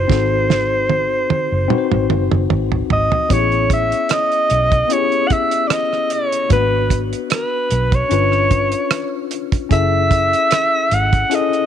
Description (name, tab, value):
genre	lush 1970s-style soul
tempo	75 BPM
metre	4/4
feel	swing 54% on 16ths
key	unclear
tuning	A4 = 441 Hz
part	warm alto saxophone	melody	0.0-11.7 s	B4 to F#5	-17 LUFS	right 1 dB	none
part	tine electric piano	accompaniment	0.0-11.7 s	A#3 to B#4	-22 LUFS	left 16 dB	overdrive, fast stereo tremolo
part	vintage muted fingered electric bass	bass	0.0-11.2 s	F#1 to B1	-20 LUFS	right 1 dB	none
part	damped 70s drum kit	drums	0.1-11.7 s	hi-hat, kick drum, rim click, snare drum, toms	-18 LUFS	right 4 dB	none
part	celesta	texture	3.3-4.8 s	C#5	-33 LUFS	right 17 dB	none
room	light reverb, studio ambience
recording	1960s-style stereo with parts hard left and right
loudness	-14 LUFS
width	side -9 dB against mid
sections	0.0-3.3 A section; 3.3-11.7 B section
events	drum fill 0.1-3.3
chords	0.1 G#7b9; 3.3 Amaj9; 6.5 G#m7b5; 8.1 G7#11; 9.7 F#m7